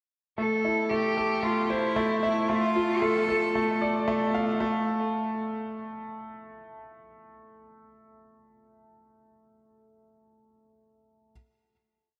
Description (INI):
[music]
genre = electronica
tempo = 114 BPM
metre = 4/4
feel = straight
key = A minor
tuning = A4 = 440 Hz
[part]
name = rich cello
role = melody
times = 0.4-3.8 s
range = E4 to A4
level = -31 LUFS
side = equal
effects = low-pass filter, tape echo
[part]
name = clear concert grand piano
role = riff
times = 0.4-11.3 s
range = A3 to F5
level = -29 LUFS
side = equal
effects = subtle chorus, tape echo
[sound]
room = wet lush hall reverb, RT60 2.7 s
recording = dreamy mix soaked in reverb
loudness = -27 LUFS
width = mono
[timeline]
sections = 0.4-4.6 build; 4.6-8.8 final note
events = build-up 0.4-4.6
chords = 0.4 Am; 2.5 Dm; 4.6 N.C.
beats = | 0.39 0.91 1.44 1.97 | 2.49 3.02 3.54 4.07 | 4.60 5.12 5.65 6.18 | 6.70 7.23 7.76 8.28